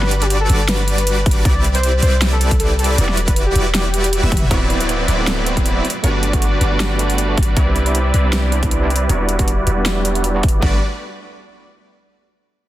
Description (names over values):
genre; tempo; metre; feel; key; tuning
future bass; 157 BPM; 4/4; swing 55% on 16ths, half-time; G major; A4 = 437 Hz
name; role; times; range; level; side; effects
warm velvety synth lead; melody; 0.0-4.4 s; G4 to D5; -23 LUFS; left 1 dB; chorus, sidechain pumping, digital delay
supersaw chords; riff; 0.0-10.8 s; F#3 to E5; -21 LUFS; equal; sidechain pumping, low-pass filter, digital delay
warm 808-style bass; bass; 0.0-10.8 s; D1 to C2; -18 LUFS; equal; sidechain pumping
big-room dance drum kit; drums; 0.0-10.6 s; hi-hat, snare drum, toms; -22 LUFS; equal; overdrive
electronic kick drum; drums; 1.3-10.7 s; none; -17 LUFS; equal; overdrive
overdriven tine electric piano; accompaniment; 4.5-10.8 s; G3 to A4; -25 LUFS; right 3 dB; fast tremolo, sidechain pumping, digital delay
downlifter; sound effects; 4.5-7.6 s; none; -29 LUFS; right 1 dB; none
room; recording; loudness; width
little or no reverb; dense, heavily limited modern master; -14 LUFS; side -14 dB against mid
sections
0.0-4.5 A section; 4.5-10.6 B section; 10.6-12.2 C section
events
drop 0.0-4.5; drum fill 4.2; filter sweep on 808-style bass 4.5-10.6; filter sweep on supersaw synth 4.5-10.6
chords
0.0 Gmaj7; 1.5 Cmaj9; 3.0 Em9; 4.5 D13; 5.8 Gmaj7; 7.6 Cmaj9; 9.1 Em9; 10.6 Gmaj7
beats
0.31 0.69 1.07 | 1.45 1.83 2.22 2.60 | 2.98 3.36 3.75 4.13 | 4.51 4.89 5.27 5.66 | 6.04 6.42 6.80 7.18 | 7.57 7.95 8.33 8.71 | 9.10 9.48 9.86 10.24 | 10.62